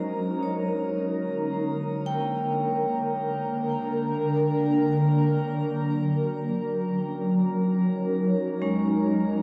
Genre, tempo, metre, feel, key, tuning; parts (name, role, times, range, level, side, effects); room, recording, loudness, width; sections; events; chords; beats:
ambient; free time; A4 = 440 Hz
shimmering ambient pad; sustained chords; 0.0-9.4 s; D3 to Bb4; -27 LUFS; equal; chorus, built-in reverb, phaser, shimmer reverb
vibraphone with hard mallets; arpeggios; 0.0-9.4 s; Ab3 to G5; -33 LUFS; equal; diffuse ambient delay, shimmer reverb
wet lush hall reverb, RT60 2.5 s; dark, warm production; -26 LUFS; mono
0.0-9.4 A section
fade-in on vibraphone 0.0-9.4
0.0 Gb6; 1.0 Bb; 5.3 Gb6
free time